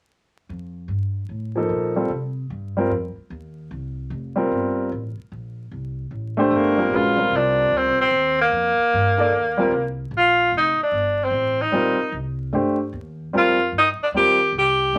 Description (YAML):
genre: jazz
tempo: 150 BPM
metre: 4/4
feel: swing 64% on 8ths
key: F mixolydian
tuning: A4 = 442 Hz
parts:
  - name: upright bass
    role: bass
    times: 0.5-15.0 s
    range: F1 to C3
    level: -32 LUFS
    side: equal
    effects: none
  - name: warm baby grand piano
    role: accompaniment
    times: 1.6-15.0 s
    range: F3 to D5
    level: -23 LUFS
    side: equal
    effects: none
  - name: clear tenor saxophone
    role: melody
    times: 6.5-14.9 s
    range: A3 to G4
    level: -20 LUFS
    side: equal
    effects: none
room: moderate studio ambience, RT60 0.5 s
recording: vinyl crackle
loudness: -21 LUFS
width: mono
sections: 0.5-6.9 A section; 6.9-15.0 B section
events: none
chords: 0.5 Fsus4; 6.9 F9sus4